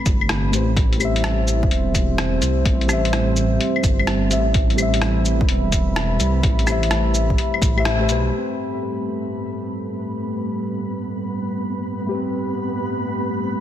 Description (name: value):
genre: future garage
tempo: 127 BPM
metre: 4/4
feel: swing 67% on 16ths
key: A minor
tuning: A4 = 439 Hz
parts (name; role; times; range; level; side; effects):
- dark analog pad; sustained chords; 0.0-13.6 s; G3 to B5; -25 LUFS; right 3 dB; chorus, vintage 12-bit sampler grit, sidechain pumping
- dark detuned saw bass; bass; 0.1-8.3 s; E1 to C2; -21 LUFS; equal; sidechain pumping
- electronic kick drum; drums; 0.1-7.7 s; none; -20 LUFS; equal; none
- lo-fi sampler-style drum kit; drums; 0.1-8.2 s; cabasa, claves, hi-hat, rim click; -25 LUFS; left 2 dB; soft clipping on snare
- muted felt-like synth keys; accompaniment; 0.5-13.6 s; A3 to E5; -25 LUFS; left 4 dB; chorus, sidechain pumping, digital delay
- flickering grainy texture; texture; 8.9-13.6 s; B3 to B5; -29 LUFS; right 2 dB; built-in reverb
room: light reverb, digital ambience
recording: dense, heavily limited modern master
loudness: -18 LUFS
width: side -11 dB against mid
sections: 0.0-8.3 A section; 8.3-13.6 B section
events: band accent 7.9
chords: 0.0 Am9